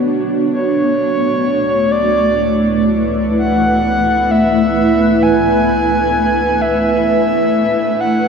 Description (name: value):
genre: ambient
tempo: free time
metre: none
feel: none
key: unclear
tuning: A4 = 440 Hz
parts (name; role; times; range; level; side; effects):
- granular cloud pad; sustained chords; 0.0-8.3 s; A3 to B4; -14 LUFS; equal; built-in reverb, shimmer reverb
- deep rumbling drone; bass; 1.7-8.3 s; B1 to D2; -29 LUFS; left 1 dB; built-in reverb, phaser, tube saturation
- bowed-like drone; drone; 0.0-8.3 s; A3 to D4; -26 LUFS; equal; none
- breathy flute-like synth lead; melody; 0.5-8.3 s; C#5 to G#5; -16 LUFS; equal; chorus, shimmer reverb, tape echo
room: wet huge ambient reverb, RT60 7.0 s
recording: dreamy mix soaked in reverb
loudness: -12 LUFS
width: side -6 dB against mid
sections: 0.0-8.3 A section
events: fade-in on synth drone 0.0-8.3; filter sweep on ambient pad 0.0-8.3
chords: 0.0 Bm7; 0.5 Aadd9/C#